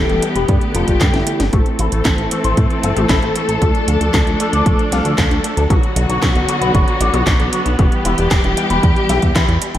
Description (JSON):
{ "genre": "italo disco", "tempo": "115 BPM", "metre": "4/4", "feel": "straight", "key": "A minor", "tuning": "A4 = 440 Hz", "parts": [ { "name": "soft octave-layered synth lead", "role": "melody", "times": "0.0-1.4 s", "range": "E4 to A4", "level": "-22 LUFS", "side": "left 3 dB", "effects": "chorus, analog delay" }, { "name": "rich studio string section", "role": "sustained chords", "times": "0.0-9.8 s", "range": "D3 to A4", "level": "-19 LUFS", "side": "left 1 dB", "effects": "low-pass filter" }, { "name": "electric guitar with an envelope filter", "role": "arpeggios", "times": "0.0-9.8 s", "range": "F#3 to F5", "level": "-23 LUFS", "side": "left 2 dB", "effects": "low-pass filter, analog delay" }, { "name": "chorused synth bass", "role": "bass", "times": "0.0-9.8 s", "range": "D1 to A2", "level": "-19 LUFS", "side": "equal", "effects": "tube saturation" }, { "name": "house drum kit", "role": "drums", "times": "0.1-9.8 s", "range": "handclaps, hi-hat, snare drum, toms", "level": "-22 LUFS", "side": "equal", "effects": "high-pass filter on hats, high-pass filter on snare, high-pass filter on toms" }, { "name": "electronic kick drum", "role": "drums", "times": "0.5-9.5 s", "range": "none", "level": "-16 LUFS", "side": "equal", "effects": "none" } ], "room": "moderate plate reverb, RT60 2.0 s, digital ambience", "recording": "dreamy mix soaked in reverb", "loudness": "-13 LUFS", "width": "side -12 dB against mid", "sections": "0.0-1.5 A section; 1.5-9.8 B section", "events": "drum fill 1.0-1.5", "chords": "0.5 Gadd9; 1.5 Am; 3.6 Dm; 5.7 Bm; 7.8 Em" }